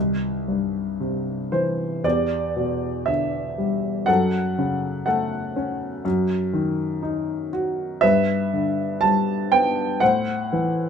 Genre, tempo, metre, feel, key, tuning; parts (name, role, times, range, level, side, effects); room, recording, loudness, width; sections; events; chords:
classical, lyrical solo piano; 56-62 BPM; 4/4; rubato; A4 = 442 Hz
dark grand piano; solo; 0.0-10.9 s; C2 to A5; -20 LUFS; equal
light reverb; minimal, uncompressed stereo recording; -20 LUFS; side -7 dB against mid
0.0-10.9 A section
0.0 C; 2.0 Em7; 4.1 F#m; 6.0 F#m6; 8.0 Em7/G; 10.0 Am